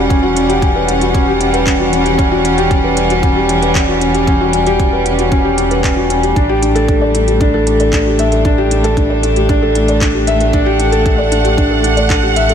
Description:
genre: piano and strings electronica.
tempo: 115 BPM.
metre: 4/4.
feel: straight.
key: E dorian.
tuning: A4 = 439 Hz.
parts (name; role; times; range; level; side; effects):
warm symphonic string section; sustained chords; 0.0-12.5 s; E3 to F#5; -18 LUFS; right 2 dB; sidechain pumping.
felt-muted upright piano; riff; 0.0-12.5 s; C#4 to E5; -14 LUFS; left 1 dB; ping-pong delay.
round analog bass; bass; 0.0-12.5 s; E1 to A1; -18 LUFS; right 1 dB; sidechain pumping.
electronic kick drum; drums; 0.1-12.2 s; none; -16 LUFS; equal; studio reverb.
organic electronic drum kit; drums; 0.1-12.5 s; handclaps, hi-hat; -22 LUFS; right 1 dB; studio reverb.
room: light reverb.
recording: none.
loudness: -10 LUFS.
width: side -8 dB against mid.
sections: 0.0-12.5 A section.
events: none.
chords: 0.0 Em69; 6.4 A7sus4.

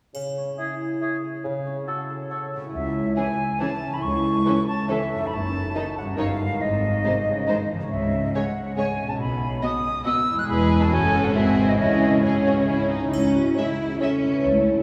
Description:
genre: cinematic, playful, whimsical film cue.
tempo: 139 BPM.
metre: 3/4.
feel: straight.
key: C# minor.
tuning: A4 = 439 Hz.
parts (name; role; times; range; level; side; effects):
mellow bassoon; accompaniment; 0.1-1.8 s; C#3; -37 LUFS; equal; none.
triangle; percussion; 0.1-1.0, 13.1-14.0 s; none; -49 LUFS; equal; none.
concert harp; arpeggios; 0.2-14.8 s; E2 to D#5; -31 LUFS; equal; none.
silver concert flute; second line; 0.6-12.9 s; C#5 to F#6; -29 LUFS; equal; none.
warm oboe; second line; 0.6-2.5 s; G#4 to A4; -36 LUFS; equal; none.
clear studio cello section; bass; 2.7-14.8 s; C#2 to E4; -29 LUFS; equal; none.
rich studio double bass section; bass; 2.7-14.8 s; E1 to C#2; -30 LUFS; equal; none.
rich studio violin section; melody; 3.2-14.1 s; G#4 to E5; -36 LUFS; equal; none.
rich studio violin section; second line; 3.2-14.1 s; C#4 to G#4; -34 LUFS; equal; none.
rich studio viola section; accompaniment; 3.2-14.1 s; D#3 to C#4; -32 LUFS; equal; none.
vibraphone with medium hard mallets; melody; 13.1-14.8 s; E4 to C#5; -28 LUFS; equal; none.
room: wet cathedral reverb, RT60 6.4 s.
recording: recorded in a church or concert hall, small room ambience.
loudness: -23 LUFS.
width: mono.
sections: 0.1-2.7 A section; 2.7-13.1 B section; 13.1-14.8 B section.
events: none.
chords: 0.1 C#m; 1.4 F#m/C#; 2.7 C#m; 4.0 A/C#; 5.3 D#dim/F#; 6.2 D#7/G; 6.6 G#; 7.9 C#m; 9.2 B; 10.5 E; 10.9 F#m; 11.4 G#7; 11.8 C#m.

